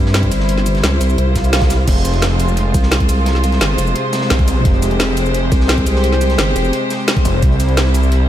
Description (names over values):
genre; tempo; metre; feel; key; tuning
dark technical drum and bass; 173 BPM; 4/4; straight; F harmonic minor; A4 = 440 Hz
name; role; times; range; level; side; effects
warm studio string section; sustained chords; 0.0-8.3 s; C3 to C5; -18 LUFS; left 1 dB; sidechain pumping
vowel-sweep wobble bass; bass; 0.0-6.7 s; F1 to G2; -15 LUFS; equal; chorus
crunchy breakbeat drum kit; drums; 0.1-8.2 s; hi-hat, snare drum; -30 LUFS; equal; none
drum and bass drum kit; drums; 0.1-8.2 s; cabasa, crash cymbal, hi-hat, ride cymbal, snare drum; -21 LUFS; right 1 dB; overdrive
electronic kick drum; drums; 0.2-7.5 s; none; -16 LUFS; equal; overdrive
swell; sound effects; 1.3-1.9 s; none; -25 LUFS; right 4 dB; none
snarling distorted saw bass; bass; 1.9-8.3 s; F1 to C2; -15 LUFS; equal; distortion, overdrive
room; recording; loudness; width
light reverb, small room ambience; none; -12 LUFS; side -12 dB against mid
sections
0.0-8.3 A section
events
swell 1.3-1.9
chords
0.0 C; 1.9 Fm; 7.4 C